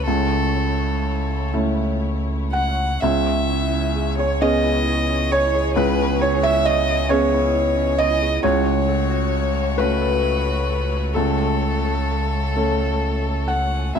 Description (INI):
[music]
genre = neoclassical piano and strings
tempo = 39-45 BPM (dotted quarters)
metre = 6/8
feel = rubato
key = C# minor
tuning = A4 = 440 Hz
[part]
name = rich violin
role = melody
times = 0.0-14.0 s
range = A4 to F#5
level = -25 LUFS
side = left 5 dB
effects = none
[part]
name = felt-muted upright piano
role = accompaniment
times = 0.0-14.0 s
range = C#2 to F#5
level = -21 LUFS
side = right 1 dB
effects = none
[part]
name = rich studio string section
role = sustained chords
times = 0.0-14.0 s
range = A3 to C#5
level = -31 LUFS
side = left 2 dB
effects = none
[part]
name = sub bass with octave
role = bass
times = 0.0-13.9 s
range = C#2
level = -24 LUFS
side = equal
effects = none
[part]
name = concert harp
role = arpeggios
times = 3.0-14.0 s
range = C#4 to G#5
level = -30 LUFS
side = right 5 dB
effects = slapback echo
[sound]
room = little or no reverb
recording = none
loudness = -18 LUFS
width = side -7 dB against mid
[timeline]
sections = 0.0-3.0 A section; 3.0-14.0 B section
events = none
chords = 0.1 A/C#; 3.0 C#m7; 8.4 F#m/C#; 11.1 A/C#